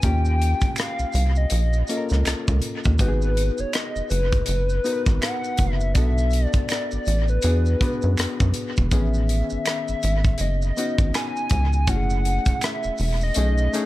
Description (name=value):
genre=R&B, neo-soul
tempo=81 BPM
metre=4/4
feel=swing 60% on 16ths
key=unclear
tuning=A4 = 440 Hz
part: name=hollow square lead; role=melody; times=0.0-13.9 s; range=B4 to G#5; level=-28 LUFS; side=left 1 dB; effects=chorus, dub echo
part: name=barky reed electric piano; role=accompaniment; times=0.0-13.9 s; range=D#3 to B4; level=-29 LUFS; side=left 4 dB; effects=overdrive, dub echo
part: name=rubbery square bass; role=bass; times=0.0-13.7 s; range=E1 to F#2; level=-21 LUFS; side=equal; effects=none
part: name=tight funk drum kit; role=drums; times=0.0-13.9 s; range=hi-hat, kick drum, rim click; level=-24 LUFS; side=equal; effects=dub echo
part: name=maracas and finger snaps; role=percussion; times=0.0-13.9 s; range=none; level=-37 LUFS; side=right 4 dB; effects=dub echo
room=little or no reverb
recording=echo-heavy mix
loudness=-20 LUFS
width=side -16 dB against mid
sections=0.0-13.9 A section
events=none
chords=0.0 D#7; 3.0 G#m7; 6.0 Bm7; 7.4 E9; 8.9 Amaj9#11; 11.9 F#m7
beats=| 0.03 0.77 1.51 2.25 | 2.99 3.73 4.47 5.21 | 5.95 6.69 7.43 8.17 | 8.91 9.65 10.39 11.14 | 11.88 12.62 13.36